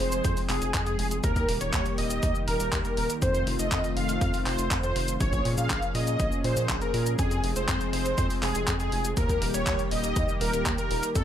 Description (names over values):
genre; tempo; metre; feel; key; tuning
italo disco; 121 BPM; 4/4; straight; F minor; A4 = 441 Hz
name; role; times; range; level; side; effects
wide unison lead; melody; 0.0-11.2 s; Ab4 to F5; -30 LUFS; equal; ensemble chorus, ping-pong delay
warm analog pad; sustained chords; 0.0-11.2 s; Eb3 to Ab4; -32 LUFS; left 1 dB; chorus
round analog bass; bass; 0.0-11.2 s; Eb1 to Bb2; -30 LUFS; equal; none
clean 12-bit digital drum machine; drums; 0.0-11.2 s; cabasa, handclaps, hi-hat; -33 LUFS; equal; none
electronic kick drum; drums; 0.2-11.2 s; none; -30 LUFS; equal; none
room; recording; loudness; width
light reverb; none; -24 LUFS; side -10 dB against mid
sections
0.0-11.2 A section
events
none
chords
0.0 Fm; 1.2 Eb; 3.2 F7; 5.2 Bbm7; 7.2 Fm; 9.2 Eb